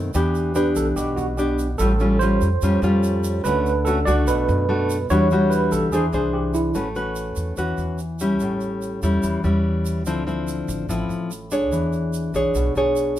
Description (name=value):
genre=bossa nova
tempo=145 BPM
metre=4/4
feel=straight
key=A major from 6.8 s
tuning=A4 = 441 Hz
part: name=nylon-string guitar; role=accompaniment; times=0.0-13.2 s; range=A2 to C#5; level=-21 LUFS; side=left 1 dB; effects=none
part: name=upright bass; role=bass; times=0.0-13.2 s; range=A1 to F#2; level=-25 LUFS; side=equal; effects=none
part: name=egg shaker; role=percussion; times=0.1-13.2 s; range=none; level=-38 LUFS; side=right 6 dB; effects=none
part: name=overdriven tine electric piano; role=second line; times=0.2-6.7 s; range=E4 to D5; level=-24 LUFS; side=right 4 dB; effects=fast tremolo
room=moderate studio reverb, RT60 0.8 s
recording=band playing live in one room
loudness=-19 LUFS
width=side -12 dB against mid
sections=0.0-6.8 A section; 6.8-13.2 B section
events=none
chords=0.1 Em7; 1.8 A7alt; 3.4 Dmaj7; 4.3 Bm7; 5.1 Em9; 5.9 Eaug7; 6.8 A69; 8.4 A7; 10.1 Dm9; 11.7 E6